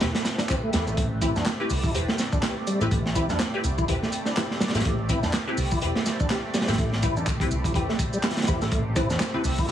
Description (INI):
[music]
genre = breakbeat, breaks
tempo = 124 BPM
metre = 4/4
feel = swing 57% on 16ths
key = A minor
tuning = A4 = 440 Hz
[part]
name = lush unison pad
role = sustained chords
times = 0.0-9.7 s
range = A3 to D5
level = -33 LUFS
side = right 1 dB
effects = chorus, phaser, vintage 12-bit sampler grit, sidechain pumping
[part]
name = filtered dub chord stab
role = stabs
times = 0.0-9.7 s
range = C4 to B4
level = -32 LUFS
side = left 2 dB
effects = phaser, ensemble chorus, dub echo
[part]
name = picked electric bass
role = bass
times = 0.0-9.7 s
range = E1 to E2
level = -28 LUFS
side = equal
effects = none
[part]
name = crunchy breakbeat drum kit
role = drums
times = 0.0-9.7 s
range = hi-hat, kick drum, snare drum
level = -26 LUFS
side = right 1 dB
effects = none
[part]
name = electronic shaker and handclaps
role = drums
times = 0.0-9.7 s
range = none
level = -35 LUFS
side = right 1 dB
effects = none
[part]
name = tonewheel organ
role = riff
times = 0.1-9.7 s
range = G3 to A4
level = -31 LUFS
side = equal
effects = overdrive, chorus vibrato, slow rotary speaker, dub echo
[part]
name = folk marimba with hard mallets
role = melody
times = 9.0-9.2 s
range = C5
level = -34 LUFS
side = right 2 dB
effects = small speaker sound, dub echo
[part]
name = congas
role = percussion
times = 9.0-9.7 s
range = none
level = -36 LUFS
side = left 3 dB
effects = none
[sound]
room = light reverb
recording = heavily compressed radio sound, multiband compression, vinyl crackle, small room ambience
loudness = -22 LUFS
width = side -10 dB against mid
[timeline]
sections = 0.0-9.7 A section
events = none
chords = 0.0 Am9